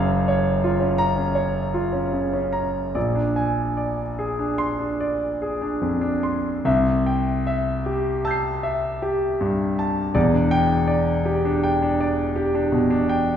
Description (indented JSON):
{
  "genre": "classical, impressionist solo piano",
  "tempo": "46-58 BPM (dotted quarters)",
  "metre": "9/8",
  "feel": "rubato",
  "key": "C lydian",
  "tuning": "A4 = 439 Hz",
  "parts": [
    { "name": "warm concert grand piano", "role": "solo", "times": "0.0-13.4 s", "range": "E1 to C7", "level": "-20 LUFS", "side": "equal", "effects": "none" }
  ],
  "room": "wet recital hall reverb, RT60 1.5 s",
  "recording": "heard from further back in the room",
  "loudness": "-20 LUFS",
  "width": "side -9 dB against mid",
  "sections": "0.0-13.4 A section",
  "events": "none",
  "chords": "0.0 F#maj7; 3.0 Bb9; 6.7 C6; 10.2 Em7",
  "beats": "0.64 1.75 | 2.96 4.19 5.41 | 6.66 7.87 9.03 | 10.16 11.25 12.35"
}